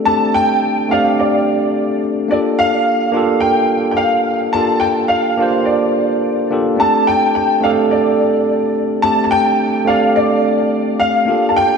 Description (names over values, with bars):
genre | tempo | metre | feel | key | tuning
chillout | 107 BPM | 4/4 | swing 53% on 16ths | unclear | A4 = 440 Hz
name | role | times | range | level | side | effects
tine electric piano | accompaniment | 0.0-11.8 s | A3 to D5 | -16 LUFS | moving between left 3 dB and right 4 dB | auto-pan, tape echo
warm grand piano | melody | 0.1-11.8 s | D5 to A5 | -15 LUFS | equal | ensemble chorus, tape echo
room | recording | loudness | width
wet lush hall reverb, RT60 3.2 s | dreamy mix soaked in reverb | -13 LUFS | side -5 dB against mid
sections
0.0-11.8 A section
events
none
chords
0.0 D7sus4; 2.3 Gm9; 6.8 D7sus4